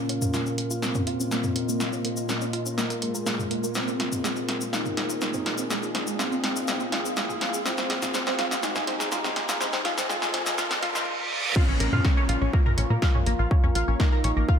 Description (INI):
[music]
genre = melodic techno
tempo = 123 BPM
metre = 4/4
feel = straight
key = Bb minor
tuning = A4 = 440 Hz
[part]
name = soft octave-layered synth lead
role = melody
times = 0.0-14.6 s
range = Ab3 to F4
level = -32 LUFS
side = left 1 dB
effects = chorus, sidechain pumping, ping-pong delay
[part]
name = dark analog pad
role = sustained chords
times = 0.0-14.6 s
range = Bb2 to Bb5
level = -35 LUFS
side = right 1 dB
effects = chorus, sidechain pumping
[part]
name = tight sequenced synth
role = arpeggios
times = 0.0-14.6 s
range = Ab3 to Bb5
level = -32 LUFS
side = equal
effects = chorus, phaser, sidechain pumping, ping-pong delay
[part]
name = riser, reverse cymbal and downlifter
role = sound effects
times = 1.7-14.6 s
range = none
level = -34 LUFS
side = right 1 dB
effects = none
[part]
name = granular cloud pad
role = texture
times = 0.0-14.6 s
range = Bb2 to F5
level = -36 LUFS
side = equal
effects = built-in reverb, sidechain pumping
[part]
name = punchy analog drum machine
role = drums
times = 0.1-14.3 s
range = crash cymbal, hi-hat, snare drum, toms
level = -28 LUFS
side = equal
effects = sidechain pumping on hats, sidechain pumping on toms, sidechain pumping on cymbals
[part]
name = cabasa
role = percussion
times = 0.2-11.0 s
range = none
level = -36 LUFS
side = left 4 dB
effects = none
[part]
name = electronic kick drum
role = drums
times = 11.6-14.6 s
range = none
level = -22 LUFS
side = equal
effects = overdrive
[part]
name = tight sequencer bass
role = bass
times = 11.7-14.4 s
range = Bb1 to Bb2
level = -25 LUFS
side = equal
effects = sidechain pumping
[sound]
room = moderate lush hall reverb, RT60 2.1 s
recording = high-pass filter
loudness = -23 LUFS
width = side -7 dB against mid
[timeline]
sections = 0.0-11.6 A section; 11.6-14.6 B section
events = build-up 0.0-11.6; drum fill 0.0-11.1; filter sweep on synth arpeggio sound 0.0-11.6; filter sweep on soft synth lead 0.0-11.6; filter sweep 0.0-11.6; riser 1.7-11.1; reverse cymbal 10.6-11.6; drop 11.6-14.6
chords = 0.0 Bbm; 3.8 Fm/Bb; 11.6 Bbm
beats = 0.34 0.83 1.31 | 1.80 2.29 2.78 3.27 | 3.75 4.24 4.73 5.22 | 5.71 6.19 6.68 7.17 | 7.66 8.14 8.63 9.12 | 9.61 10.10 10.58 11.07 | 11.56 12.05 12.53 13.02 | 13.51 14.00 14.48